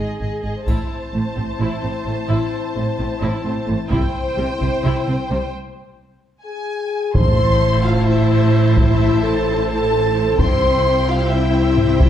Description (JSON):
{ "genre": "cinematic, epic orchestral film score", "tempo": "260 BPM (eighths)", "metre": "7/8", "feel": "straight", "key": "A minor", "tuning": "A4 = 442 Hz", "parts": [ { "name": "warm symphonic violin section", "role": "melody", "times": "0.0-12.1 s", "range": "D#5 to A5", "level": "-32 LUFS", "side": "left 2 dB", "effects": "none" }, { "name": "warm symphonic violin section", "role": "second line", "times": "0.0-12.1 s", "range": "G#4 to C6", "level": "-26 LUFS", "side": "left 1 dB", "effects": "none" }, { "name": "warm symphonic viola section", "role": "accompaniment", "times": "0.0-12.1 s", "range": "G3 to C5", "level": "-26 LUFS", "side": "equal", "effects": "none" }, { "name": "mellow French horn section", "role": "sustained chords", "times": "0.0-12.1 s", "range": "C4 to C5", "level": "-21 LUFS", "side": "left 4 dB", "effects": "none" }, { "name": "rich symphonic double bass section", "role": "bass", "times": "0.0-12.1 s", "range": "G#1 to C2", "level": "-22 LUFS", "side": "right 3 dB", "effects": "none" }, { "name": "rich symphonic cello section", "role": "bass", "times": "0.7-12.1 s", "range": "A2 to C3", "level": "-23 LUFS", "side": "right 2 dB", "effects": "none" }, { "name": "taiko ensemble", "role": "drums", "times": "0.7-12.1 s", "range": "none", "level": "-19 LUFS", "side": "equal", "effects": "none" }, { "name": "triangle", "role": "percussion", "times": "0.7-1.6 s", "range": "none", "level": "-51 LUFS", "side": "left 3 dB", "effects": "none" }, { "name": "timpani", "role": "percussion", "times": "7.1-7.8 s", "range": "A2", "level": "-25 LUFS", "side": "left 1 dB", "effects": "none" }, { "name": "sub drop", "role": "sound effects", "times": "7.2-8.8 s", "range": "none", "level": "-26 LUFS", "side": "equal", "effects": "none" } ], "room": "moderate recital hall reverb, RT60 1.4 s", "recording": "dark, warm production", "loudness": "-16 LUFS", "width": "side -10 dB against mid", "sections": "0.7-7.2 A section; 7.2-12.1 B section", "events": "break 5.5-7.2; drum fill 6.5-7.2; impact 7.2-8.8", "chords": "0.0 G#5; 0.7 Am; 3.9 C; 7.2 Am; 10.4 C", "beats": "0.21 0.45 | 0.68 0.91 1.14 1.37 1.60 1.84 2.07 | 2.30 2.53 2.76 2.99 3.23 3.46 3.69 | 3.92 4.15 4.38 4.61 4.84 5.08 5.31 | 5.54 5.77 6.00 6.23 6.46 6.70 6.93 | 7.16 7.39 7.62 7.85 8.08 8.31 8.54 | 8.77 9.00 9.23 9.47 9.70 9.93 10.16 | 10.39 10.62 10.85 11.08 11.31 11.54 11.78 | 12.01" }